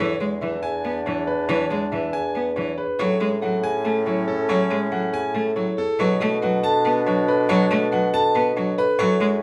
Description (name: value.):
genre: classical, minimalist pattern music.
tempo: 280 BPM (eighths).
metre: 7/8.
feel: straight.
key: unclear.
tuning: A4 = 440 Hz.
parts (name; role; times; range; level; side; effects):
clear concert grand piano; melody; 0.0-9.3 s; A4 to A5; -27 LUFS; equal; none.
clear clarinet; second line; 0.0-9.4 s; C#4 to E4; -33 LUFS; equal; none.
rich cello; accompaniment; 0.0-9.4 s; E3 to B3; -28 LUFS; equal; none.
marimba with medium mallets; arpeggios; 0.0-9.4 s; D4 to B4; -27 LUFS; equal; none.
clear bassoon; bass; 0.0-9.4 s; E2 to B2; -30 LUFS; equal; none.
room: moderate large studio reverb, RT60 0.8 s.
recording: none.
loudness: -22 LUFS.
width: mono.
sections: 0.0-9.4 A section.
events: none.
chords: 0.0 E7; 3.0 Amaj7; 6.0 Bm7.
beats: 0.21 0.42 0.64 0.85 1.06 1.28 | 1.49 1.71 1.92 2.14 2.35 2.56 2.78 | 2.99 3.21 3.42 3.64 3.85 4.06 4.28 | 4.49 4.71 4.92 5.14 5.35 5.56 5.78 | 5.99 6.21 6.42 6.64 6.85 7.06 7.28 | 7.49 7.71 7.92 8.14 8.35 8.56 8.78 | 8.99 9.21 9.42.